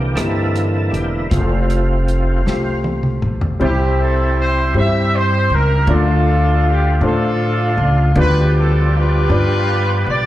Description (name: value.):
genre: slow gospel.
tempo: 53 BPM (dotted quarters).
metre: 6/8.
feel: straight.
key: unclear.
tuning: A4 = 442 Hz.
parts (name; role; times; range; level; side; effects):
warm concert grand piano; accompaniment; 0.0-10.3 s; C3 to D5; -22 LUFS; left 2 dB; slapback echo.
overdriven tonewheel organ; sustained chords; 0.0-10.3 s; C3 to A4; -24 LUFS; right 2 dB; slow rotary speaker, chorus vibrato.
upright bass; bass; 0.0-10.3 s; E1 to A2; -16 LUFS; equal; none.
warm soul drum kit; drums; 0.2-3.6 s; hi-hat, kick drum, rim click, snare drum, toms; -22 LUFS; equal; none.
clear horn section; melody; 3.6-10.3 s; C4 to E5; -19 LUFS; equal; slapback echo.
room: studio reverb.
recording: live gig heard through the venue's PA, club reverb.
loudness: -14 LUFS.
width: side -14 dB against mid.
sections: 0.0-3.6 A section; 3.6-10.3 B section.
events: tonewheel organ solo 0.0-3.6; drum fill 2.5-3.6.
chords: 0.0 C7; 1.3 F; 3.6 C; 5.9 Dm; 8.2 G7/D.